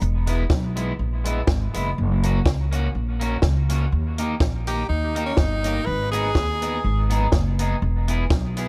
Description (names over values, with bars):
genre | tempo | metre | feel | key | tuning
ska | 123 BPM | 4/4 | swing 54% on 8ths | unclear | A4 = 440 Hz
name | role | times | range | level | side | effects
upright bass | bass | 0.0-8.7 s | E1 to D#2 | -25 LUFS | equal | none
compact cocktail drum kit | drums | 0.0-8.7 s | hi-hat, kick drum, snare drum | -25 LUFS | equal | none
electric guitar at the edge of break-up | accompaniment | 0.3-8.7 s | G#3 to G#4 | -31 LUFS | equal | lush chorus, analog delay
bright tenor saxophone | melody | 4.7-7.1 s | C#4 to B4 | -28 LUFS | equal | analog delay
room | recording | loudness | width
light reverb | none | -22 LUFS | mono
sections
0.0-8.7 A section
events
none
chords
0.0 E; 2.0 F#; 3.9 D#; 5.9 G#m; 7.8 E